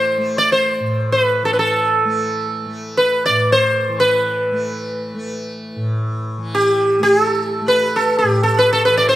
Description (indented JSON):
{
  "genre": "indian classical, Hindustani",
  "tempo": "free time",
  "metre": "none",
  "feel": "none",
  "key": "A raga kafi",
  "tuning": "A4 = 440 Hz",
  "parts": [
    { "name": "sitar", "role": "melody", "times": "0.0-9.2 s", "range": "G4 to D5", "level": "-15 LUFS", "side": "equal", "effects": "none" },
    { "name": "tanpura", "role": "drone", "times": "0.0-9.2 s", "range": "A2 to A3", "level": "-24 LUFS", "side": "equal", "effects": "none" }
  ],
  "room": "light reverb",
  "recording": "close, detailed microphones",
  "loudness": "-14 LUFS",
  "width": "side -14 dB against mid",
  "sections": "0.0-9.2 A section",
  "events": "none",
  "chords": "none",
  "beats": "free time"
}